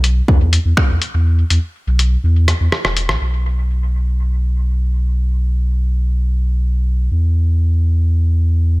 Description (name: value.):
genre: dub techno.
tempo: 123 BPM.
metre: 4/4.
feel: straight.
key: unclear.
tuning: A4 = 441 Hz.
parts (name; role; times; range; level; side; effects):
warm sub bass; bass; 0.0-8.8 s; E1 to E2; -14 LUFS; equal; sidechain pumping.
lo-fi sampler-style drum kit; drums; 0.0-3.2 s; finger snaps, hi-hat, rim click; -20 LUFS; left 1 dB; studio reverb, dub echo.
electronic kick drum; drums; 0.3-0.9 s; none; -14 LUFS; equal; overdrive, studio reverb.
room: little or no reverb.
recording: none.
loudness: -14 LUFS.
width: side -23 dB against mid.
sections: 0.0-3.2 A section; 3.2-8.8 B section.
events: kick drops out 1.3-3.2; drum fill 2.5-3.2.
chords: none.